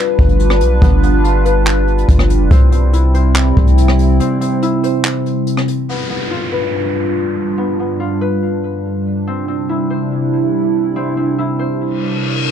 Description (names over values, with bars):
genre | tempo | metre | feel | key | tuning
hip hop, atmospheric cloud-rap | 142 BPM | 4/4 | half-time | C major | A4 = 440 Hz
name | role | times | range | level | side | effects
dark analog pad | sustained chords | 0.0-12.5 s | G2 to B4 | -16 LUFS | right 1 dB | chorus, phaser, sidechain pumping
concert harp | arpeggios | 0.0-12.5 s | B3 to C5 | -23 LUFS | left 5 dB | low-pass filter, ping-pong delay
long sustained 808-style bass | bass | 0.2-4.2 s | F1 to C2 | -12 LUFS | equal | none
jazz brush drum kit | drums | 0.2-5.8 s | handclaps, hi-hat, kick drum, rim click | -14 LUFS | equal | none
downlifter and reverse cymbal | sound effects | 5.9-12.5 s | none | -24 LUFS | left 1 dB | none
room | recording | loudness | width
light reverb | dark, warm production | -12 LUFS | side -9 dB against mid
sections
0.0-5.9 A section; 5.9-12.5 B section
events
break 4.2-5.9; reverse cymbal 12.0-12.5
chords
0.0 G7; 2.5 C; 5.9 G7; 9.3 C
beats
0.40 | 0.82 1.24 1.67 2.09 | 2.51 2.93 3.35 3.78 | 4.20 4.62 5.04 5.47 | 5.89 6.31 6.74 7.16 | 7.58 8.00 8.43 8.85 | 9.27 9.69 10.12 10.54 | 10.96 11.38 11.81 12.23